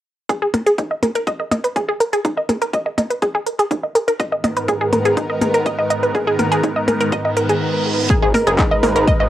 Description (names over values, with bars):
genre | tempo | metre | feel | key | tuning
melodic techno | 123 BPM | 4/4 | straight | G# minor | A4 = 442 Hz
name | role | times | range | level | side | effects
wide unison pluck | arpeggios | 0.3-9.3 s | D#4 to D#5 | -18 LUFS | equal | sidechain pumping, cassette tape, tape echo
electronic kick drum | drums | 0.3-9.2 s | none | -20 LUFS | equal | overdrive, high-pass filter on kick, small room reverb, cassette tape
techno drum kit | drums | 0.3-9.2 s | handclaps, hi-hat, percussion blips | -22 LUFS | left 1 dB | overdrive, sidechain pumping on hats, small room reverb, cassette tape, sidechain pumping on perc
lush unison pad | sustained chords | 4.5-9.3 s | G#2 to B4 | -20 LUFS | equal | chorus, phaser, sidechain pumping, cassette tape
reverse cymbal | sound effects | 7.3-8.1 s | none | -25 LUFS | right 5 dB | none
gritty driven synth bass | bass | 8.2-9.3 s | F#1 to G#1 | -20 LUFS | equal | distortion, sidechain pumping
room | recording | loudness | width
moderate studio reverb, RT60 0.6 s | home recording on cassette | -16 LUFS | side -12 dB against mid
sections
0.3-8.1 A section; 8.1-9.3 B section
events
reverse cymbal 7.3-8.1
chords
0.3 G#madd9